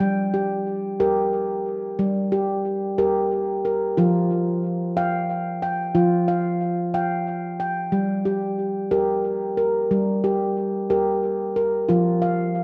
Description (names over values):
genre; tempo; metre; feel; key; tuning
world meditative, meditative tuned percussion; 61 BPM (dotted quarters); 6/8; straight; G minor; A4 = 440 Hz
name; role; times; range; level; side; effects
handpan; solo; 0.0-12.6 s; F3 to G5; -23 LUFS; equal; tape echo
room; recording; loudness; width
wet echo chamber reverb, RT60 1.8 s, small room ambience; dark, warm production; -23 LUFS; mono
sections
0.0-12.6 A section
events
none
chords
0.0 Gm; 4.0 Fsus2; 7.9 Gm; 11.9 Fsus4